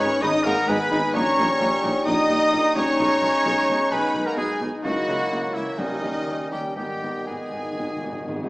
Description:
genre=classical, dramatic, fast romantic movement for symphony orchestra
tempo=128 BPM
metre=4/4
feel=uneven beats, rubato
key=G# minor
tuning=A4 = 437 Hz
part: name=rich studio violin section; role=melody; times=0.0-8.5 s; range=D#5 to D#6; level=-31 LUFS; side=left 1 dB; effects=none
part: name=clear oboe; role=second line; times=0.0-8.5 s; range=D#4 to D#5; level=-29 LUFS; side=equal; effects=none
part: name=mellow concert flute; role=second line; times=0.0-8.5 s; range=A#4 to B5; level=-29 LUFS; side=equal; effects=none
part: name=rich symphonic violin section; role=second line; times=0.0-8.5 s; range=D#4 to D#5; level=-33 LUFS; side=left 1 dB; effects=none
part: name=warm clarinet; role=second line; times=0.0-8.5 s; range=B3 to E4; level=-34 LUFS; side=equal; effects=none
part: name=warm bassoon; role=accompaniment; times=0.0-8.5 s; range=D#3 to A#3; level=-30 LUFS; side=right 1 dB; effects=none
part: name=warm symphonic viola section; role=accompaniment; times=0.0-8.4 s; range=D#3 to E4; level=-35 LUFS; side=equal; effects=none
part: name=dark French horn section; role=sustained chords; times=0.0-8.5 s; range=D#3 to D#4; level=-29 LUFS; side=left 1 dB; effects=none
part: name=concert harp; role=arpeggios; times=0.0-8.5 s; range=G#2 to D#5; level=-32 LUFS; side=left 1 dB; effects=none
part: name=mellow trumpet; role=stabs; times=0.0-8.5 s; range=D#4 to D#5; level=-27 LUFS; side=equal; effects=none
part: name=dark tuba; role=bass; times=0.0-8.4 s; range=G#1 to D#2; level=-34 LUFS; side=right 1 dB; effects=none
part: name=rich symphonic double bass section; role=bass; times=0.0-8.4 s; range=G#1 to D#2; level=-38 LUFS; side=right 1 dB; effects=none
part: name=warm symphonic cello section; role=bass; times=0.0-8.4 s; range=G#2 to D#3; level=-36 LUFS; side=equal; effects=none
part: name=timpani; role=percussion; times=5.8-8.5 s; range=G#2 to D#3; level=-37 LUFS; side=equal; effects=none
room=wet scoring stage reverb, RT60 1.9 s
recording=small speaker sound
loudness=-20 LUFS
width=side -21 dB against mid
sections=0.0-8.5 A section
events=timpani fill 6.8-8.5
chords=0.0 G#m; 1.2 D#7/A#; 3.0 G#m/B; 4.8 A#dim/C#; 5.8 D#7b9; 6.8 G#m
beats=0.23 0.69 | 1.15 1.61 2.07 2.54 | 3.00 3.46 3.92 4.38 | 4.85 5.32 5.79 6.28 | 6.78 7.28 7.78 8.28

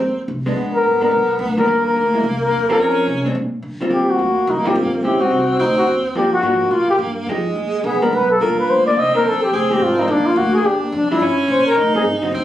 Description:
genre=jazz, small-group swing and bop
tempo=214 BPM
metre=4/4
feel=swing 61% on 8ths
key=Eb major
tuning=A4 = 440 Hz
part: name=breathy tenor saxophone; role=second line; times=0.0-12.4 s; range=Ab3 to Eb4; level=-22 LUFS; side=right 2 dB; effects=none
part: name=upright bass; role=bass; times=0.0-12.4 s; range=Eb1 to D3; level=-26 LUFS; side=equal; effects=none
part: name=vintage hollow-body jazz guitar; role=accompaniment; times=0.5-12.3 s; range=D3 to Ab4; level=-22 LUFS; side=equal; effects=none
part: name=trumpet with bucket mute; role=melody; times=0.7-12.0 s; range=Bb3 to Eb5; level=-16 LUFS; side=left 1 dB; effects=none
room=moderate small room reverb, RT60 0.5 s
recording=recorded on a phone in the room, club reverb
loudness=-15 LUFS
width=side -12 dB against mid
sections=0.0-3.9 A section; 3.9-12.4 B section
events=none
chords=0.0 Ab; 0.6 Bb7b9; 1.7 Ebmaj7; 2.2 Cm7; 2.8 Fm7; 3.4 Bbadd9; 3.9 Eb69; 5.0 Am7b5; 5.6 D7(no3); 6.2 Gm7; 7.3 Fm9; 7.8 Bb7b9; 8.4 Ebmaj9; 9.0 Cm9; 9.5 Fm7; 10.1 Bb; 10.7 Ebmaj9; 11.8 Am7b5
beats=0.00 0.28 | 0.56 0.84 1.12 1.40 | 1.68 1.96 2.24 2.52 | 2.80 3.08 3.36 3.64 | 3.92 4.20 4.48 4.76 | 5.04 5.32 5.60 5.88 | 6.16 6.44 6.72 7.00 | 7.28 7.57 7.85 8.13 | 8.41 8.69 8.97 9.25 | 9.53 9.81 10.09 10.37 | 10.65 10.93 11.21 11.49 | 11.77 12.05 12.33

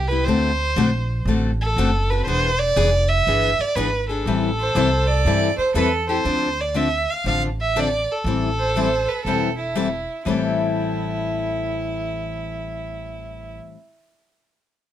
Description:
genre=acoustic string swing (jazz manouche)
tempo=120 BPM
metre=4/4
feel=swing 66% on 8ths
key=A minor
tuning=A4 = 440 Hz
part: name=warm violin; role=melody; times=0.0-9.8 s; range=A4 to F5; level=-22 LUFS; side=right 2 dB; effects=none
part: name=upright bass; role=bass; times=0.0-13.6 s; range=E1 to G2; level=-24 LUFS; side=right 1 dB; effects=none
part: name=picked steel-string acoustic guitar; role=accompaniment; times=0.1-13.8 s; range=A2 to A4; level=-23 LUFS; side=left 5 dB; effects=none
part: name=warm violin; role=second line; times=4.6-13.6 s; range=E4 to D5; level=-24 LUFS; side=right 4 dB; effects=none
room=light reverb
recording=none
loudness=-18 LUFS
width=side -11 dB against mid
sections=0.0-6.3 A section; 6.3-10.2 B section; 10.2-14.2 C section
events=none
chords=0.3 D7; 2.3 E7; 4.3 Am7; 6.3 Dm7; 8.3 Am7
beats=| 0.28 0.78 1.27 1.77 | 2.27 2.77 3.27 3.77 | 4.26 4.76 5.26 5.76 | 6.26 6.75 7.25 7.75 | 8.25 8.75 9.25 9.75 | 10.25 10.75 11.25 11.75 | 12.25 12.75 13.25 13.75

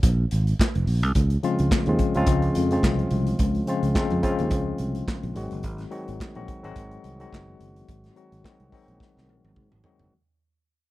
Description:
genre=disco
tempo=107 BPM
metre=4/4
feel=swing 56% on 16ths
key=unclear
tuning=A4 = 444 Hz
part: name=fingered electric bass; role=bass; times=0.0-10.1 s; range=F1 to Ab2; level=-24 LUFS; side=right 1 dB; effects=none
part: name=modern studio drum kit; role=drums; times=0.0-10.1 s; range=handclaps, hi-hat, kick drum, snare drum, toms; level=-25 LUFS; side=right 1 dB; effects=none
part: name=mellow tine electric piano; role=accompaniment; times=1.4-10.1 s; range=Db3 to Gb4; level=-26 LUFS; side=left 2 dB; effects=medium stereo tremolo
room=little or no reverb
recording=none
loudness=-21 LUFS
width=side -17 dB against mid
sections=0.0-10.1 A section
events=fade-out 0.0-10.1; drum fill 9.0-10.1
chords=0.0 Bb7(no3); 1.2 Dbmaj7; 5.4 Ab7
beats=0.03 0.59 | 1.15 1.71 2.27 2.83 | 3.40 3.96 4.52 5.08 | 5.64 6.20 6.76 7.32 | 7.88 8.44 9.00 9.56

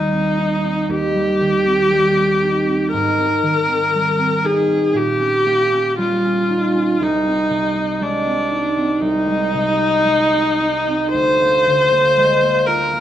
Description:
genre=classical, romantic duo for viola and harp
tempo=59 BPM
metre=4/4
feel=rubato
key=unclear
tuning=A4 = 436 Hz
part: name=rich viola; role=melody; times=0.0-13.0 s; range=D4 to C5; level=-16 LUFS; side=left 1 dB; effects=none
part: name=concert harp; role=accompaniment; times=0.0-13.0 s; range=C2 to F4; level=-20 LUFS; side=right 2 dB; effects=none
room=moderate recital hall reverb, RT60 1.8 s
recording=none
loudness=-14 LUFS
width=side -11 dB against mid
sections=0.0-13.0 A section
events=none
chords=0.0 Cm/Eb; 2.9 Abmaj7; 5.0 Eb7/Bb; 7.0 Ab/C; 11.1 Bb7/D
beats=0.90 1.91 | 2.93 3.94 4.96 5.99 | 7.01 8.01 9.01 10.04 | 11.13 12.16

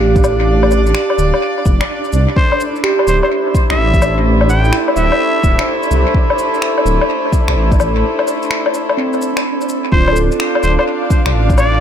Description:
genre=future garage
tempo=127 BPM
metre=4/4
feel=swing 66% on 16ths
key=unclear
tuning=A4 = 440 Hz
part: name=tine electric piano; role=accompaniment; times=0.0-11.8 s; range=C4 to A4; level=-20 LUFS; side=right 5 dB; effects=vintage 12-bit sampler grit, sidechain pumping, low-pass filter, analog delay
part: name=rich chamber string section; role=sustained chords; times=0.0-11.8 s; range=A3 to F5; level=-20 LUFS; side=left 1 dB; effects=sidechain pumping
part: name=dark detuned saw bass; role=bass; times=0.0-11.8 s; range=D1 to C2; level=-14 LUFS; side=equal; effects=sidechain pumping
part: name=flickering grainy texture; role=texture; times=0.0-11.8 s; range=D4 to D5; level=-23 LUFS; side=right 1 dB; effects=built-in reverb
part: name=electronic kick drum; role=drums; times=0.2-11.6 s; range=none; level=-14 LUFS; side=equal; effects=studio reverb
part: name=electronic shaker, woodblock and finger snaps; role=drums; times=0.2-11.7 s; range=none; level=-20 LUFS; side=left 3 dB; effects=studio reverb, dub echo
part: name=trumpet with straight mute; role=melody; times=2.4-5.6, 9.9-11.8 s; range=C5 to G5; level=-20 LUFS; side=equal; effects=dub echo
room=moderate spring reverb, RT60 2.0 s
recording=echo-heavy mix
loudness=-11 LUFS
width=side -9 dB against mid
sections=0.0-11.8 A section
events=break 8.0-9.9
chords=0.0 Dm7; 2.4 Am7/D; 9.9 Dm7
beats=0.01 | 0.48 0.95 1.42 1.90 | 2.37 2.84 3.31 3.78 | 4.26 4.73 5.20 5.67 | 6.15 6.62 7.09 7.56 | 8.04 8.51 8.98 9.45 | 9.93 10.40 10.87 11.34

